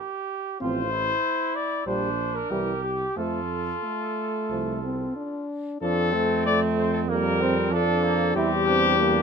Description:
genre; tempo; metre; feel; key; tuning
classical, brass quintet; 93 BPM; 4/4; uneven beats; F major; A4 = 436 Hz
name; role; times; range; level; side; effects
warm trumpet; second line; 0.0-9.2 s; Bb3 to A4; -31 LUFS; right 7 dB; none
mellow trumpet; melody; 0.6-9.2 s; F4 to D5; -26 LUFS; left 5 dB; none
warm French horn; accompaniment; 0.6-9.2 s; F3 to D4; -28 LUFS; left 2 dB; none
warm trombone; accompaniment; 0.6-9.2 s; E3 to E4; -30 LUFS; right 6 dB; none
warm tuba; bass; 0.6-9.2 s; A1 to F2; -29 LUFS; right 5 dB; none
room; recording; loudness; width
light reverb; close, detailed microphones; -22 LUFS; side -6 dB against mid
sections
0.0-5.8 A section; 5.8-9.2 B section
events
none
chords
0.0 N.C.; 0.6 F/A; 1.9 Gm7/Bb; 2.5 C7; 3.2 F; 7.1 Gm7/F; 8.4 C7/E

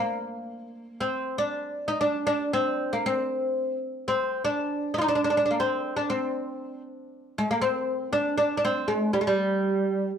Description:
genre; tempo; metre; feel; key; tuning
arabic; 118 BPM; 3/4; straight; unclear; A4 = 439 Hz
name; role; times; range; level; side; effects
oud; solo; 0.0-10.1 s; G3 to F4; -24 LUFS; equal; none
room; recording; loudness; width
moderate studio reverb, RT60 0.7 s; band playing live in one room; -24 LUFS; side -8 dB against mid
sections
0.0-10.2 A section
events
none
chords
none

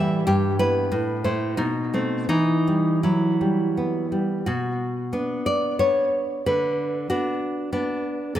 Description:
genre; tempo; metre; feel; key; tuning
romantic piece for solo classical guitar; 80-96 BPM; 3/4; rubato; E minor, B minor from 4.5 s; A4 = 440 Hz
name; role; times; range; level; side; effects
nylon-string guitar; solo; 0.0-8.4 s; G2 to E5; -21 LUFS; equal; tape echo
room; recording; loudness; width
moderate recital hall reverb, RT60 1.6 s; none; -21 LUFS; side -11 dB against mid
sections
0.0-4.5 A section; 4.5-8.4 B section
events
none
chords
0.3 Em/G; 0.9 Am; 1.6 B7b9; 2.3 Em; 4.5 Bm; 6.5 Bm/D

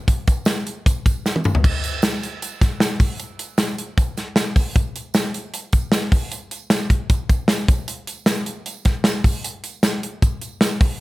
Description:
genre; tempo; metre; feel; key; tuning
indie pop; 154 BPM; 4/4; straight; none; none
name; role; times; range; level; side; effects
modern studio drum kit; drums; 0.1-10.9 s; crash cymbal, hi-hat, kick drum, snare drum, toms; -18 LUFS; equal; none
tambourine; percussion; 0.1-10.9 s; none; -37 LUFS; right 7 dB; none
room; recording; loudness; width
light reverb; none; -18 LUFS; side -19 dB against mid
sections
0.0-1.6 A section; 1.6-11.0 B section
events
drum fill 1.2-1.6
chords
none

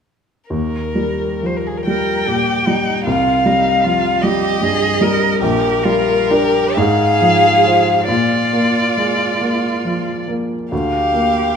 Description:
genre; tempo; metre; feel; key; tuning
classical, slow romantic movement for piano trio; 42-52 BPM (dotted quarters); 6/8; rubato; Eb major; A4 = 441 Hz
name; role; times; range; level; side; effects
warm violin; melody; 0.5-11.6 s; Ab4 to G5; -17 LUFS; left 3 dB; none
warm baby grand piano; accompaniment; 0.5-11.6 s; Bb1 to C5; -18 LUFS; equal; none
rich cello; second line; 1.9-11.6 s; Eb4 to Bb4; -21 LUFS; right 8 dB; none
room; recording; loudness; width
wet recital hall reverb, RT60 1.6 s; minimal, uncompressed stereo recording; -13 LUFS; side -7 dB against mid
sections
0.5-11.6 A section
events
none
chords
0.5 Eb; 3.1 Cm; 5.4 Gm/Bb; 6.8 Fm/Ab; 8.1 Bb; 10.7 Bb/D

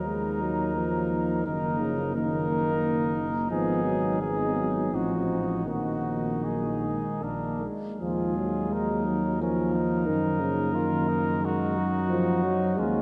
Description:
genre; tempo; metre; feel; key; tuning
classical, hymn-like piece for brass band; 75-91 BPM; 3/4; rubato; Eb minor; A4 = 440 Hz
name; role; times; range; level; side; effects
warm cornet; melody; 0.0-13.0 s; F4 to Bb4; -35 LUFS; equal; none
clear flugelhorn; second line; 0.0-13.0 s; Db4 to F4; -37 LUFS; equal; none
mellow euphonium; accompaniment; 0.0-13.0 s; Gb3 to C4; -36 LUFS; equal; none
mellow trombone; accompaniment; 0.0-13.0 s; Db3 to Ab3; -31 LUFS; equal; none
mellow tuba; bass; 0.0-13.0 s; Gb1 to Gb2; -34 LUFS; equal; none
room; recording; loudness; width
wet cathedral reverb, RT60 5.5 s; dark, warm production, nothing above 10.3 kHz; -27 LUFS; mono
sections
0.0-13.0 A section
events
none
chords
0.0 Eb5; 1.5 Ebm/Gb; 3.5 Abm7; 4.9 Adim7; 5.7 Ebm/Bb; 7.2 Bb; 8.0 Ebm; 10.1 Ebm/Gb; 12.1 Ebmadd9/Gb

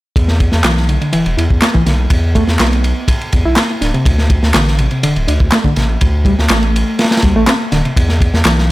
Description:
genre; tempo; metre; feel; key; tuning
breakbeat, breaks; 123 BPM; 4/4; straight; E minor; A4 = 442 Hz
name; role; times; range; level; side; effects
saturated sub bass; bass; 0.2-8.7 s; D1 to E2; -15 LUFS; equal; none
crunchy breakbeat drum kit; drums; 0.2-8.7 s; kick drum, ride cymbal, snare drum; -14 LUFS; equal; none
bright reed electric piano; riff; 0.6-8.7 s; C3 to E4; -17 LUFS; equal; tube saturation, vintage 12-bit sampler grit, tape echo
electronic handclaps; drums; 0.6-8.6 s; none; -19 LUFS; equal; none
room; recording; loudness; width
studio reverb; none; -11 LUFS; side -18 dB against mid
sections
0.2-8.7 A section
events
none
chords
0.2 E5; 3.8 D5; 8.0 E5

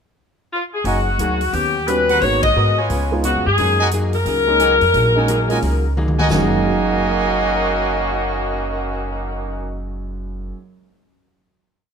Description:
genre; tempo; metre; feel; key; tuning
jazz, big band swing; 176 BPM; 4/4; swing 63% on 8ths; F# major; A4 = 440 Hz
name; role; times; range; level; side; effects
bright saxophone section; melody; 0.5-9.8 s; D#3 to D#5; -19 LUFS; left 2 dB; none
archtop guitar, miked and amplified; accompaniment; 0.8-10.6 s; C#3 to A#4; -27 LUFS; left 4 dB; none
clear trumpet section; stabs; 0.8-9.8 s; E#4 to G#5; -23 LUFS; right 2 dB; none
upright bass; bass; 0.8-10.5 s; F#1 to G#2; -22 LUFS; equal; none
swinging big-band drum kit; drums; 0.8-6.4 s; hi-hat, kick drum, ride cymbal, snare drum, toms; -26 LUFS; equal; none
warm grand piano; accompaniment; 1.9-10.8 s; F#2 to F#6; -25 LUFS; right 4 dB; none
room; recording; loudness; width
light reverb; close, detailed microphones; -15 LUFS; side -6 dB against mid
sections
0.0-0.9 pickup bar; 0.9-6.3 A section; 6.3-9.0 final chord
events
band accent 2.4; drum fill 6.0-6.3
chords
0.0 N.C.; 0.9 F#69; 1.5 D#7alt; 2.2 G#m9; 2.9 C#7; 3.6 F#69

